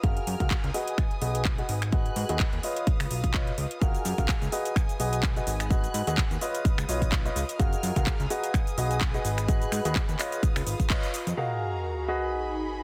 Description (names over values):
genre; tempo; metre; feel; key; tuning
piano house; 127 BPM; 4/4; swing 56% on 16ths; F# major; A4 = 441 Hz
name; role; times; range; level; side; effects
dark studio violin section; sustained chords; 0.0-12.8 s; F#4 to F#6; -41 LUFS; equal; sidechain pumping
clear baby grand piano; riff; 0.0-12.8 s; E#4 to E#5; -35 LUFS; equal; vintage 12-bit sampler grit, sidechain pumping, low-pass filter, tape echo
fat analog bass; bass; 0.0-11.3 s; F#1 to G#2; -33 LUFS; equal; sidechain pumping
electronic kick drum; drums; 0.0-11.0 s; none; -29 LUFS; equal; none
house drum kit; drums; 0.0-11.4 s; cabasa, finger snaps, handclaps, hi-hat; -36 LUFS; equal; soft clipping on snare
airy breathy pad; texture; 0.0-12.8 s; D#4 to B5; -42 LUFS; equal; chorus, sidechain pumping
sub drop; sound effects; 11.4-12.8 s; none; -37 LUFS; equal; none
room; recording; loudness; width
light reverb; dense, heavily limited modern master; -27 LUFS; mono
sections
0.0-11.4 A section; 11.4-12.8 B section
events
band accent 10.9; impact 11.4-12.8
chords
0.0 F#maj9; 0.7 B6; 2.6 C#9; 3.8 F#maj9; 4.5 B6; 6.4 C#9; 7.6 F#maj9; 8.3 B6; 10.2 C#9; 11.4 F#maj9; 12.1 B6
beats
| 0.04 0.51 0.98 1.45 | 1.93 2.40 2.87 3.34 | 3.81 4.29 4.76 5.23 | 5.71 6.18 6.65 7.12 | 7.59 8.07 8.54 9.01 | 9.48 9.96 10.43 10.90 | 11.37 11.85 12.32 12.79